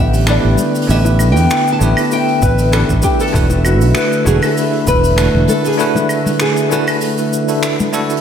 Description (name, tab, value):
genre	sunset chillout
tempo	98 BPM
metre	4/4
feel	swing 54% on 16ths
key	unclear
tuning	A4 = 439 Hz
part	nylon-string guitar	melody	0.0-7.9 s	F#4 to A5	-18 LUFS	left 1 dB	ping-pong delay
part	bell-like tine electric piano	accompaniment	0.0-8.2 s	A3 to B4	-18 LUFS	equal	medium stereo tremolo, auto-pan, ping-pong delay
part	airy breathy pad	sustained chords	0.0-8.2 s	D3 to E5	-20 LUFS	left 1 dB	chorus
part	fretless electric bass	bass	0.0-5.4 s	E1 to E2	-13 LUFS	equal	tube saturation, ensemble chorus
part	jazz brush drum kit	drums	0.1-8.2 s	cabasa, claves, finger snaps, hi-hat	-22 LUFS	right 1 dB	none
part	congas and bongos	percussion	0.6-7.9 s	none	-24 LUFS	left 4 dB	none
part	electronic kick drum	drums	2.4-5.0 s	none	-18 LUFS	equal	overdrive
room	moderate plate reverb, RT60 2.1 s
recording	dreamy mix soaked in reverb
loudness	-11 LUFS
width	side -8 dB against mid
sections	0.0-8.2 A section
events	break 5.8-8.2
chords	0.0 A9sus4; 3.3 E9sus4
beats	0.28 | 0.89 1.50 2.12 2.73 | 3.34 3.95 4.56 5.18 | 5.79 6.40 7.01 7.62